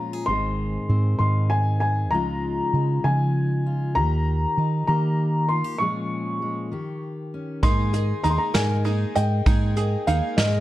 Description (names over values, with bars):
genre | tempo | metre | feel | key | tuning
indie folk with a building arrangement | 65 BPM (dotted quarters) | 6/8 | straight | unclear | A4 = 440 Hz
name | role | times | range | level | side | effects
dark upright piano | melody | 0.0-10.6 s | Eb5 to Db6 | -26 LUFS | left 1 dB | none
fingerpicked steel-string acoustic guitar | accompaniment | 0.0-9.5 s | Ab2 to Ab4 | -29 LUFS | left 2 dB | none
hollow-body short-scale fingered electric bass | bass | 0.3-10.6 s | Ab1 to Eb3 | -22 LUFS | right 1 dB | none
picked twelve-string acoustic guitar | accompaniment | 7.6-10.6 s | Ab3 to Ab4 | -30 LUFS | left 5 dB | none
open-back banjo | arpeggios | 7.6-10.6 s | Eb4 to Eb5 | -30 LUFS | right 7 dB | none
vintage brush drum kit | drums | 7.6-10.5 s | hi-hat, kick drum, snare drum | -23 LUFS | equal | none
room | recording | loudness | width
light reverb | dark, warm production | -20 LUFS | side -15 dB against mid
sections
0.0-7.6 A section; 7.6-10.6 B section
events
break 5.8-7.6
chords
0.3 Ab; 2.1 Dbadd9; 4.0 Eb; 5.8 Bbm7; 6.7 Eb7; 7.6 Absus2